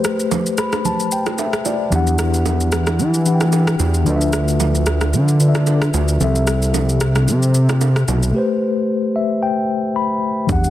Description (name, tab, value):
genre	amapiano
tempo	112 BPM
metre	4/4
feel	swing 55% on 16ths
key	unclear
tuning	A4 = 440 Hz
part	mellow tine electric piano	accompaniment	0.0-10.7 s	C3 to B5	-19 LUFS	left 3 dB	medium stereo tremolo
part	deep house drum kit	drums	0.0-10.7 s	kick drum, rim click, shaker	-24 LUFS	equal	overdrive
part	bongos and congas	percussion	0.3-10.6 s	none	-26 LUFS	right 8 dB	none
part	fat analog bass	bass	1.9-8.3 s	B1 to E3	-16 LUFS	equal	none
part	glassy FM pad	sustained chords	10.6-10.7 s	D3 to F#5	-32 LUFS	left 1 dB	none
part	hollow log drum bass	bass	10.5-10.7 s	E2	-18 LUFS	equal	none
room	digital ambience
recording	dense, heavily limited modern master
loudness	-15 LUFS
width	side -13 dB against mid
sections	0.0-10.5 A section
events	tine electric piano fill 0.3-1.9, 8.9-10.5; break 8.3-10.5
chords	0.0 Am9; 1.9 Em9; 4.1 Dm69; 6.2 C6; 8.3 Am9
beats	0.31 0.85 1.38 | 1.92 2.46 2.99 3.53 | 4.06 4.60 5.13 5.67 | 6.21 6.74 7.28 7.81 | 8.35 8.88 9.42 9.96 | 10.49